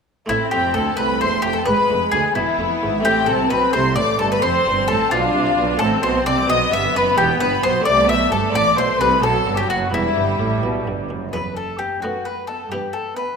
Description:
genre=classical, baroque-style concerto movement with solo episodes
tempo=87 BPM (dotted quarters)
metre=6/8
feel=straight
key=A minor, E minor from 5.8 s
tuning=A4 = 440 Hz
part: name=bowl-back mandolin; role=melody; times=0.3-13.4 s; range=E4 to E5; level=-21 LUFS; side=left 2 dB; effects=none
part: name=rich chamber violin section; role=melody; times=0.3-13.3 s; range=D#5 to E6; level=-23 LUFS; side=left 4 dB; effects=none
part: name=rich chamber violin section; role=second line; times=0.3-13.3 s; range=E4 to E5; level=-23 LUFS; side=left 2 dB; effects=none
part: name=buff-stop harpsichord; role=accompaniment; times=0.3-13.4 s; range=C2 to F#4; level=-29 LUFS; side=right 1 dB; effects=none
part: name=clear symphonic viola section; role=accompaniment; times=0.3-13.3 s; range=F#3 to D4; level=-25 LUFS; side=right 3 dB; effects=none
part: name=rich chamber double bass section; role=bass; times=0.3-11.3 s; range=E1 to D2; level=-27 LUFS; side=right 4 dB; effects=none
part: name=rich studio cello section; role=bass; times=0.3-13.2 s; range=C2 to C3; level=-25 LUFS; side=right 4 dB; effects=none
room=moderate concert hall reverb, RT60 2.1 s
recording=none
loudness=-16 LUFS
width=side -5 dB against mid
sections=0.3-11.3 A section; 11.3-13.4 B section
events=none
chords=0.3 Am; 1.7 E7; 3.1 Am; 4.4 F; 5.8 F#dim/A; 6.5 B5; 7.2 Em; 7.9 Am; 9.2 B7; 9.9 Em; 12.0 B7/F#; 12.7 Em/G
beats=| 0.30 0.99 | 1.68 2.37 | 3.06 3.75 | 4.43 5.12 | 5.80 6.49 | 7.17 7.86 | 8.54 9.23 | 9.93 10.63 | 11.33 12.02 | 12.71

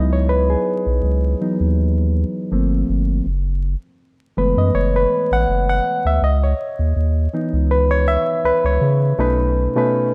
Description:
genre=R&B, neo-soul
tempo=81 BPM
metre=4/4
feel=swing 54% on 16ths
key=C# minor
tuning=A4 = 442 Hz
part: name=barky reed electric piano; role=accompaniment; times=0.0-10.1 s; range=B2 to F#5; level=-21 LUFS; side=equal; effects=spring reverb
part: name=round analog bass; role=bass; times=0.0-9.7 s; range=F#1 to C#3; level=-20 LUFS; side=equal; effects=none
room=light reverb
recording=vinyl crackle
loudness=-18 LUFS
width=mono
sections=0.0-9.2 A section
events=reed electric piano solo 0.0-9.2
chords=0.0 C#m11; 2.5 Gm11; 3.2 F#m11; 6.2 C#m9; 9.2 B7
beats=| 0.28 1.02 1.76 2.50 | 3.25 3.99 4.73 5.47 | 6.21 6.95 7.69 8.43 | 9.17 9.91

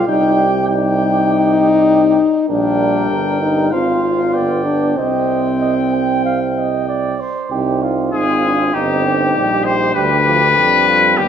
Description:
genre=classical, brass quintet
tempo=98 BPM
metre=4/4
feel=straight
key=C minor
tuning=A4 = 439 Hz
part: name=clear trumpet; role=melody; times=0.0-11.3 s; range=G4 to G5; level=-18 LUFS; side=left 5 dB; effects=none
part: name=mellow flugelhorn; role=second line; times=0.0-11.3 s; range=Eb4 to G5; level=-22 LUFS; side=right 7 dB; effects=none
part: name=clear French horn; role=accompaniment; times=0.0-11.3 s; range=B3 to F4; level=-17 LUFS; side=left 3 dB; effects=none
part: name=warm euphonium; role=accompaniment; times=0.0-11.3 s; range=F3 to Eb4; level=-22 LUFS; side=right 5 dB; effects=none
part: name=clear tuba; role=bass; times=0.0-11.3 s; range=G1 to F2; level=-21 LUFS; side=right 2 dB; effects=none
room=moderate scoring stage reverb, RT60 1.6 s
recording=none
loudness=-13 LUFS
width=side -8 dB against mid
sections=0.0-7.5 A section; 7.5-11.3 B section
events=none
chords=0.1 Cm; 2.5 Gm/Bb; 3.7 Fm/Ab; 4.3 G7; 5.0 Cm; 10.0 G7/D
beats=| 0.08 0.68 1.28 1.89 | 2.49 3.10 3.72 4.34 | 4.97 5.61 6.25 6.88 | 7.51 8.13 8.74 9.35 | 9.96 10.57 11.19

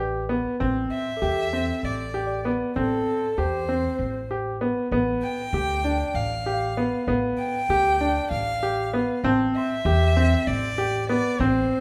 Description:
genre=contemporary instrumental, chamber music in an uneven meter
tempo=194 BPM (eighths)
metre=7/8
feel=straight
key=A minor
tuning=A4 = 440 Hz
part: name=clear grand piano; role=arpeggios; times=0.0-11.8 s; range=B3 to G4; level=-27 LUFS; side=equal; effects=none
part: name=upright bass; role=bass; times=0.0-11.6 s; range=A1 to E2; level=-30 LUFS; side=equal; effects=none
part: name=celesta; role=texture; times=0.0-10.8 s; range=A4 to C6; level=-39 LUFS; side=equal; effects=none
part: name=rich violin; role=melody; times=0.9-11.8 s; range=A4 to G5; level=-30 LUFS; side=equal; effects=none
room=moderate recital hall reverb, RT60 1.7 s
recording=none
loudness=-24 LUFS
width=mono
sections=0.0-11.8 A section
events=none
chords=0.0 G/A; 0.6 Am7; 4.9 G7/A; 9.2 Am7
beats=0.29 | 0.60 0.91 1.22 1.53 1.83 2.14 2.45 | 2.76 3.07 3.38 3.68 3.99 4.30 4.61 | 4.92 5.22 5.53 5.84 6.15 6.46 6.77 | 7.08 7.39 7.69 8.00 8.31 8.62 8.93 | 9.24 9.55 9.86 10.17 10.48 10.79 11.09 | 11.40 11.71

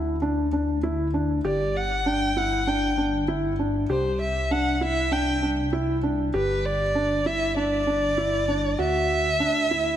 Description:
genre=piano and strings electronica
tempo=98 BPM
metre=4/4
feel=straight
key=unclear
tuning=A4 = 439 Hz
part: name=felt-muted upright piano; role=riff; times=0.0-9.9 s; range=D4 to G4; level=-25 LUFS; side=equal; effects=tape echo
part: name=dark detuned saw bass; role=bass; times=0.0-10.0 s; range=G1 to D2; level=-29 LUFS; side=equal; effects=none
part: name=dark violin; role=melody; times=1.5-10.0 s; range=B4 to G5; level=-25 LUFS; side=equal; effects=none
room=moderate lush hall reverb, RT60 2.1 s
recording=none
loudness=-22 LUFS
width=side -10 dB against mid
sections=0.0-10.0 A section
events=none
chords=0.0 Dsus2; 1.4 G5; 3.9 Cadd9; 6.3 G5; 8.8 Dadd9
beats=0.22 0.83 | 1.45 2.06 2.67 3.28 | 3.90 4.51 5.12 5.73 | 6.34 6.96 7.57 8.18 | 8.79 9.41

